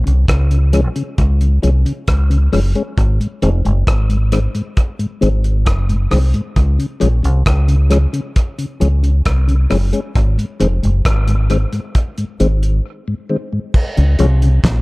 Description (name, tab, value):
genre	roots reggae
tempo	67 BPM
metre	4/4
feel	straight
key	Db major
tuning	A4 = 440 Hz
part	deep dub fingered electric bass	bass	0.0-14.8 s	F1 to Db2	-13 LUFS	equal	none
part	mellow tonewheel organ	accompaniment	0.1-14.5 s	Ab2 to Db4	-20 LUFS	left 2 dB	overdrive, slow rotary speaker
part	cloth-damped thuddy drum kit	drums	0.1-14.8 s	crash cymbal, hi-hat, kick drum, rim click, snare drum	-18 LUFS	equal	tape echo
room	studio ambience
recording	echo-heavy mix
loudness	-13 LUFS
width	side -23 dB against mid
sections	0.0-13.7 A section; 13.7-14.8 B section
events	break 12.8-13.7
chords	0.0 Db; 3.0 Ab; 6.6 Db; 10.2 Ab; 13.7 Db